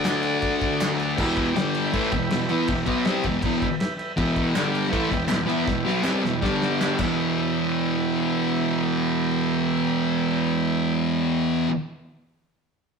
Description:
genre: garage rock duo or trio.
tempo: 160 BPM.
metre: 4/4.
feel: straight.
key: E minor.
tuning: A4 = 440 Hz.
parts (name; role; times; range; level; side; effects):
combo organ; sustained chords; 0.0-10.9 s; F#4 to G5; -32 LUFS; right 1 dB; none.
thick fuzz guitar; riff; 0.0-11.7 s; E2 to E4; -22 LUFS; equal; distortion.
cloth-damped thuddy drum kit; drums; 0.0-7.1 s; crash cymbal, kick drum, snare drum; -29 LUFS; equal; none.
group handclap; percussion; 0.1-0.9, 4.6-7.3 s; none; -32 LUFS; right 2 dB; none.
room: moderate stone room reverb, RT60 1.1 s.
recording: rough rehearsal-room recording.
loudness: -21 LUFS.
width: side -5 dB against mid.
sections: 0.0-1.2 A section; 1.2-7.2 B section; 7.2-10.2 C section.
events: drum fill 5.7-7.2.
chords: 0.0 D; 1.2 Em; 1.6 G5; 1.9 Em; 4.6 G5; 4.9 Em; 6.4 G5; 7.0 Em.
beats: 0.06 0.43 0.81 | 1.18 1.55 1.93 2.30 | 2.68 3.05 3.43 3.80 | 4.18 4.55 4.92 5.30 | 5.67 6.05 6.42 6.80 | 7.17 7.55 7.92 8.30 | 8.67 9.04 9.42 9.79.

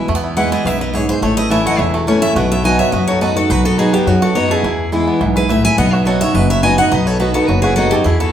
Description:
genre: bluegrass.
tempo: 211 BPM.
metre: 4/4.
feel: straight.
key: unclear.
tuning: A4 = 440 Hz.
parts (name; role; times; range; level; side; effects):
picked steel-string acoustic guitar; accompaniment; 0.0-8.3 s; E2 to F#4; -17 LUFS; equal; none.
bluegrass banjo; melody; 0.1-8.3 s; E3 to A4; -22 LUFS; right 3 dB; none.
upright bass; bass; 0.1-8.3 s; E1 to F#2; -18 LUFS; equal; none.
picked steel-string acoustic guitar; melody; 0.4-8.3 s; F#4 to G#5; -18 LUFS; equal; none.
rich fiddle; second line; 0.4-8.3 s; D#4 to E5; -26 LUFS; equal; none.
room: wet large studio reverb, RT60 1.2 s.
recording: band playing live in one room.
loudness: -12 LUFS.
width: side -10 dB against mid.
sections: 0.1-8.3 A section.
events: none.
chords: 0.1 E; 1.2 A; 2.4 B; 4.6 E; 5.8 B.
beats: | 0.09 0.37 0.66 0.94 | 1.22 1.51 1.79 2.08 | 2.36 2.65 2.93 3.22 | 3.50 3.79 4.07 4.36 | 4.64 4.92 5.21 5.49 | 5.78 6.06 6.35 6.63 | 6.92 7.20 7.49 7.77 | 8.05.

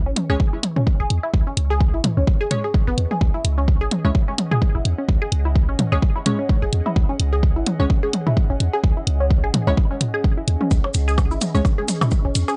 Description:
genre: minimal techno.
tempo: 128 BPM.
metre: 4/4.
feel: swing 56% on 16ths.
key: unclear.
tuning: A4 = 441 Hz.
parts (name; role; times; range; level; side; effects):
punchy sub bass; bass; 0.0-12.4 s; G#1 to E2; -23 LUFS; equal; sidechain pumping.
warbly tape-like pad; texture; 0.2-12.6 s; C#4 to C#6; -38 LUFS; equal; chorus, built-in reverb, sidechain pumping.
resonant blip pluck; riff; 0.1-12.5 s; B3 to G#4; -29 LUFS; equal; phaser, sidechain pumping, analog delay.
electronic hi-hat; drums; 0.2-12.5 s; none; -26 LUFS; equal; none.
electronic toms and percussion blips; percussion; 0.2-12.6 s; none; -25 LUFS; equal; overdrive.
wavetable chord stab; stabs; 0.3-11.6 s; G#3 to C#5; -28 LUFS; equal; analog delay.
electronic kick drum; drums; 0.4-12.2 s; none; -21 LUFS; equal; none.
maracas; percussion; 10.7-12.6 s; none; -35 LUFS; equal; none.
swarming drone; texture; 11.5-12.6 s; C#4; -40 LUFS; equal; none.
room: little or no reverb.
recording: dry, gritty hardware recording, cassette tape, nothing above 10.3 kHz.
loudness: -20 LUFS.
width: mono.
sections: 0.0-12.6 A section.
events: fade-in on ambient pad 0.0-12.6.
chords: 0.0 C#5.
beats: 0.40 0.87 | 1.34 1.80 2.27 2.74 | 3.21 3.68 4.15 4.62 | 5.09 5.55 6.02 6.49 | 6.96 7.43 7.90 8.37 | 8.84 9.30 9.77 10.24 | 10.71 11.18 11.65 12.12.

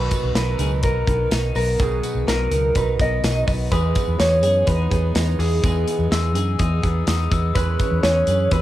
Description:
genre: jangly indie pop.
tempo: 125 BPM.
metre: 4/4.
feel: straight.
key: B major.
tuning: A4 = 439 Hz.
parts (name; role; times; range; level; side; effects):
electric guitar through a small old amp; melody; 0.0-8.6 s; G#4 to D#5; -22 LUFS; right 1 dB; spring reverb.
glockenspiel with rubber mallets; second line; 0.0-8.6 s; B5 to F#6; -32 LUFS; left 9 dB; cassette tape.
picked steel-string acoustic guitar; accompaniment; 0.0-8.6 s; B2 to B4; -29 LUFS; right 9 dB; cassette tape.
twelve-string electric guitar; arpeggios; 0.0-8.6 s; B2 to B4; -30 LUFS; left 8 dB; cassette tape.
vintage muted fingered electric bass; bass; 0.0-8.6 s; B1 to F#2; -21 LUFS; equal; none.
modern studio drum kit; drums; 0.1-8.6 s; hi-hat, kick drum, snare drum; -24 LUFS; equal; none.
tambourine; percussion; 0.1-8.4 s; none; -39 LUFS; right 11 dB; none.
room: light reverb.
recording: home recording on cassette.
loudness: -17 LUFS.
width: side -14 dB against mid.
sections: 0.0-8.6 A section.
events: none.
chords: 0.0 Bmaj7; 3.7 Emaj7; 7.6 C#m7/E.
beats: 0.35 0.83 1.31 | 1.79 2.27 2.75 3.23 | 3.71 4.20 4.68 5.16 | 5.64 6.12 6.60 7.08 | 7.56 8.04 8.52.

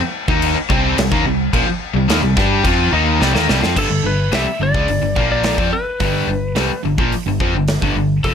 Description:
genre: hard rock.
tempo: 107 BPM.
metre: 4/4.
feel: straight.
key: unclear.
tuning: A4 = 440 Hz.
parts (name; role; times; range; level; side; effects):
cranked stack guitar; riff; 0.0-8.3 s; F2 to G4; -19 LUFS; left 13 dB; overdrive.
cranked stack guitar; riff; 0.0-8.3 s; F2 to G4; -21 LUFS; right 12 dB; overdrive.
fingered electric bass; bass; 0.0-8.3 s; F1 to G2; -21 LUFS; equal; none.
big rock drum kit; drums; 0.3-8.3 s; crash cymbal, hi-hat, kick drum, snare drum; -21 LUFS; equal; none.
lightly driven lead guitar; melody; 3.8-8.3 s; A4 to E5; -21 LUFS; left 2 dB; slapback echo.
room: light reverb.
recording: none.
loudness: -14 LUFS.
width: side -7 dB against mid.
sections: 0.0-3.8 A section; 3.8-8.3 B section.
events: drum fill 3.2-3.8.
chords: 0.0 C5; 3.8 G.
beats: 0.43 0.98 | 1.54 2.10 2.65 3.21 | 3.77 4.33 4.89 5.45 | 6.01 6.57 7.13 7.69 | 8.25.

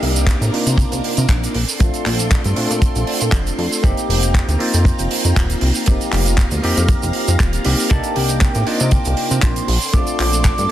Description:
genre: nu-disco, nu disco.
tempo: 118 BPM.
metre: 4/4.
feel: swing 53% on 16ths.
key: F mixolydian.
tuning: A4 = 443 Hz.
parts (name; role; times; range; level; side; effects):
bell-like tine electric piano; accompaniment; 0.0-10.7 s; A3 to G4; -22 LUFS; equal; phaser, sidechain pumping, low-pass filter.
string machine, full ensemble; sustained chords; 0.0-10.7 s; C4 to D6; -27 LUFS; equal; ensemble chorus, sidechain pumping.
chorused synth bass; bass; 0.0-10.7 s; Eb1 to C3; -18 LUFS; equal; none.
damped 70s drum kit; drums; 0.0-10.7 s; handclaps, hi-hat, shaker; -22 LUFS; right 3 dB; studio reverb.
kick drum; drums; 0.3-10.6 s; none; -16 LUFS; equal; studio reverb.
soft octave-layered synth lead; melody; 7.9-10.7 s; Eb5 to D6; -24 LUFS; right 1 dB; chorus, phaser, tape echo.
room: small room ambience.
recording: dense, heavily limited modern master.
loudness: -14 LUFS.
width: side -12 dB against mid.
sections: 0.0-10.7 A section.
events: filter sweep on tine electric piano 0.0-10.7.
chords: 0.0 Cm9; 1.5 Bbmaj9; 3.8 F9sus4; 7.9 Cm9; 9.7 Bbmaj9.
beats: 0.28 0.79 1.29 | 1.80 2.31 2.82 3.33 | 3.84 4.34 4.85 5.36 | 5.87 6.38 6.89 7.39 | 7.90 8.41 8.92 9.43 | 9.94 10.45.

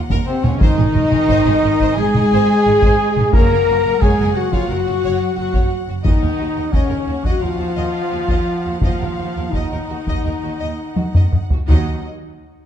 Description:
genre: cinematic, epic orchestral film score.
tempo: 87 BPM.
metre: 4/4.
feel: uneven beats.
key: Eb dorian.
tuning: A4 = 440 Hz.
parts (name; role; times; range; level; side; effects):
clear symphonic violin section; second line; 0.0-12.1 s; Eb4 to Gb5; -30 LUFS; left 4 dB; none.
rich symphonic double bass section; bass; 0.1-12.1 s; Gb1 to Eb2; -23 LUFS; right 4 dB; none.
taiko ensemble; drums; 0.1-11.9 s; none; -17 LUFS; equal; none.
dark symphonic violin section; melody; 0.3-12.1 s; C5 to Bb5; -29 LUFS; left 2 dB; none.
clear symphonic viola section; accompaniment; 0.3-12.1 s; F3 to Bb4; -26 LUFS; right 1 dB; none.
mellow French horn section; sustained chords; 0.3-12.0 s; C4 to Bb4; -20 LUFS; left 4 dB; none.
warm trumpet; stabs; 0.3-12.0 s; C4 to Bb4; -26 LUFS; right 2 dB; none.
bright studio cello section; bass; 0.3-12.1 s; C3 to Bb3; -24 LUFS; right 1 dB; none.
room: moderate scoring stage reverb, RT60 1.8 s.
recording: dark, warm production.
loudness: -14 LUFS.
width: side -9 dB against mid.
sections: 0.0-11.7 A section.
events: drum fill 11.0-11.7.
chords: 0.0 Ebm; 0.6 Ab; 3.3 Gb; 6.0 Ebmadd9; 11.7 Ebm.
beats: | 0.60 1.28 1.97 2.65 | 3.33 4.01 4.68 5.36 | 6.04 6.73 7.41 8.11 | 8.82 9.53 10.25 10.97 | 11.69.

